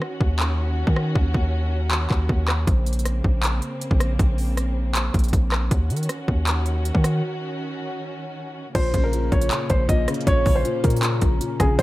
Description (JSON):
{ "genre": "hip hop, trap", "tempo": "158 BPM", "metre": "4/4", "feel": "half-time", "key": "Bb minor", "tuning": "A4 = 440 Hz", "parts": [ { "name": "dark studio string section", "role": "sustained chords", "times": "0.0-11.8 s", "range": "Db3 to Gb4", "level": "-31 LUFS", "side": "equal", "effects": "none" }, { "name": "trap drum kit", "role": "drums", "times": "0.0-11.8 s", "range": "crash cymbal, handclaps, hi-hat, kick drum, rim click", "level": "-22 LUFS", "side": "equal", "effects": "none" }, { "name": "hard-hitting 808-style bass", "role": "bass", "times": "0.2-11.8 s", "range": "Bb1 to Eb3", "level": "-22 LUFS", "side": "equal", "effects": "none" }, { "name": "felt-muted upright piano", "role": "melody", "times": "8.8-11.8 s", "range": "Ab4 to Eb5", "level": "-25 LUFS", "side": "right 1 dB", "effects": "analog delay" }, { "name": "dark concert grand piano", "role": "accompaniment", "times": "8.8-11.8 s", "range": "Bb2 to Eb3", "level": "-26 LUFS", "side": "left 5 dB", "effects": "analog delay" } ], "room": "studio reverb", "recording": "echo-heavy mix", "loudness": "-19 LUFS", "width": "side -17 dB against mid", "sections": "0.0-8.8 A section; 8.8-11.8 B section", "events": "break 0.0-2.7, 7.2-8.8", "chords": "0.0 Ebm7; 2.7 Bbmadd9; 5.7 Ebm7; 8.8 Bbm", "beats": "0.02 0.40 0.78 | 1.16 1.53 1.91 2.29 | 2.67 3.05 3.43 3.81 | 4.19 4.57 4.95 5.33 | 5.71 6.09 6.47 6.85 | 7.23 7.61 7.99 8.37 | 8.75 9.13 9.51 9.89 | 10.27 10.65 11.03 11.41 | 11.79" }